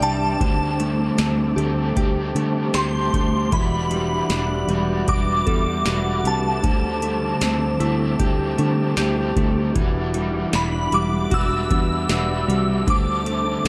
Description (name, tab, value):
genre	dream pop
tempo	77 BPM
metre	4/4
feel	straight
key	E minor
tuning	A4 = 440 Hz
part	shimmering bell with halo	melody	0.0-13.6 s	A5 to E6	-28 LUFS	equal	ensemble chorus, delay
part	overdriven electric guitar	accompaniment	0.0-13.7 s	D3 to B4	-30 LUFS	equal	harmonic tremolo, lush chorus
part	mellow tonewheel organ	sustained chords	0.0-13.7 s	G3 to D6	-31 LUFS	equal	fast rotary speaker
part	direct-recorded clean electric guitar	arpeggios	0.0-13.7 s	D3 to G4	-28 LUFS	equal	ensemble chorus, delay
part	fingered electric bass	bass	0.0-13.7 s	E1 to D3	-27 LUFS	equal	none
part	booming analog drum machine	drums	0.0-13.7 s	hi-hat, kick drum, snare drum	-26 LUFS	equal	none
part	glassy synth bell	texture	1.6-13.2 s	D4 to A4	-37 LUFS	equal	none
room	light reverb, digital ambience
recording	dark, warm production, lossy compression artefacts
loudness	-21 LUFS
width	mono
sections	0.0-13.7 A section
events	none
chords	0.4 D7sus4; 3.5 Em9; 6.6 D7sus4; 9.8 Em9; 12.9 D7sus4